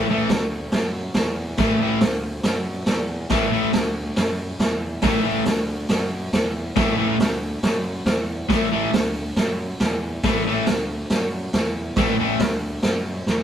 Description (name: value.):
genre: garage rock duo or trio.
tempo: 139 BPM.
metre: 4/4.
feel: straight.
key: unclear.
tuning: A4 = 441 Hz.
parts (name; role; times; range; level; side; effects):
cranked stack guitar; riff; 0.0-12.4 s; A2 to A3; -21 LUFS; left 1 dB; overdrive.
fuzz picked electric bass; bass; 0.0-13.4 s; A1 to F#2; -29 LUFS; equal; overdrive.
raw garage drum kit; drums; 0.3-13.4 s; hi-hat, kick drum, snare drum; -22 LUFS; right 1 dB; none.
room: light reverb.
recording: band playing live in one room.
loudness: -20 LUFS.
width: side -9 dB against mid.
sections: 0.0-13.4 A section.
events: drum fill 13.3.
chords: 0.0 A5.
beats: 0.30 0.73 1.16 | 1.59 2.02 2.45 2.88 | 3.31 3.74 4.17 4.61 | 5.04 5.47 5.90 6.34 | 6.77 7.20 7.63 8.07 | 8.50 8.94 9.37 9.80 | 10.24 10.67 11.11 11.54 | 11.98 12.41 12.85 13.28.